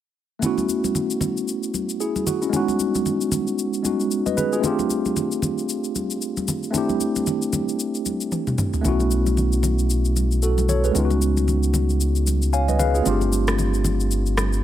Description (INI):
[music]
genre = amapiano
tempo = 114 BPM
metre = 4/4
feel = swing 58% on 16ths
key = unclear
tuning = A4 = 440 Hz
[part]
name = tine electric piano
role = accompaniment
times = 0.4-14.6 s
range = G#3 to G#5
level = -22 LUFS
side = equal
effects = medium stereo tremolo
[part]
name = afro-pop drum kit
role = drums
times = 0.4-14.6 s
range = rim click, shaker, toms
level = -28 LUFS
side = left 2 dB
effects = none
[part]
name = congas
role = percussion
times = 0.4-14.5 s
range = none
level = -29 LUFS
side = left 1 dB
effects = none
[part]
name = round analog bass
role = bass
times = 8.8-14.6 s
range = G1 to C#2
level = -20 LUFS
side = equal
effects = none
[sound]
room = little or no reverb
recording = none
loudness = -19 LUFS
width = side -11 dB against mid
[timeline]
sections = 0.4-14.6 A section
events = drum fill 8.3-8.8; tine electric piano fill 12.3-13.1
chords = 0.4 B9sus4; 2.5 C#9sus4; 4.6 G9sus4; 6.7 D9sus4; 8.8 B9sus4; 11.0 C#9sus4; 13.1 G9sus4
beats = | 0.43 0.95 1.48 2.01 | 2.53 3.06 3.58 4.11 | 4.64 5.16 5.69 6.22 | 6.74 7.27 7.79 8.32 | 8.85 9.37 9.90 10.43 | 10.95 11.48 12.01 12.53 | 13.06 13.59 14.11